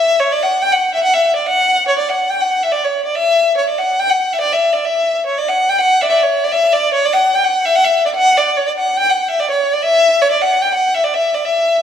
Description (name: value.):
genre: balkan folk.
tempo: 145 BPM.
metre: 2/4.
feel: straight.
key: unclear.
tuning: A4 = 443 Hz.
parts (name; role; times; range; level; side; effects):
rich violin; solo; 0.0-11.8 s; C#5 to G5; -12 LUFS; left 1 dB; none.
room: wet recital hall reverb, RT60 1.6 s.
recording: dark, warm production.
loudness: -12 LUFS.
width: side -8 dB against mid.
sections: 0.0-5.3 A section; 5.3-11.8 A section.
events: speeding up 0.0-11.8.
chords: none.